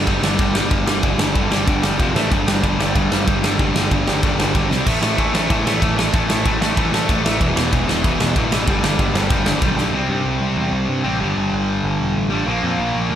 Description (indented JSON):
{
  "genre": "punk rock",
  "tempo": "189 BPM",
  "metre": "4/4",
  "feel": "straight",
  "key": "unclear",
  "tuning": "A4 = 439 Hz",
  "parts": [
    { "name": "sludgy distorted guitar", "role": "riff", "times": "0.0-13.2 s", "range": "E2 to C4", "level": "-19 LUFS", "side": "equal", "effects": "overdrive" },
    { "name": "growling picked electric bass", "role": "bass", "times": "0.0-13.2 s", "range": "E1 to G2", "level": "-24 LUFS", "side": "equal", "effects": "overdrive" },
    { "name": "big rock drum kit", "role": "drums", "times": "0.1-9.9 s", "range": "crash cymbal, kick drum, ride cymbal, snare drum, splash cymbal", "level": "-20 LUFS", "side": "equal", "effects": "none" }
  ],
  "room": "moderate lush hall reverb, RT60 1.6 s, small room ambience",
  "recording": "big arena sound",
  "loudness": "-16 LUFS",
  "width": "side -10 dB against mid",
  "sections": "0.0-9.9 A section; 9.9-13.2 B section",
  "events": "drum fill 4.7, 9.8; half time 9.9-13.2",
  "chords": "0.0 G5; 2.0 F5; 2.2 A5; 2.3 G5; 4.7 C5; 4.9 A5; 7.4 E5; 8.7 G; 9.9 C5; 11.2 G5; 12.5 Bb5"
}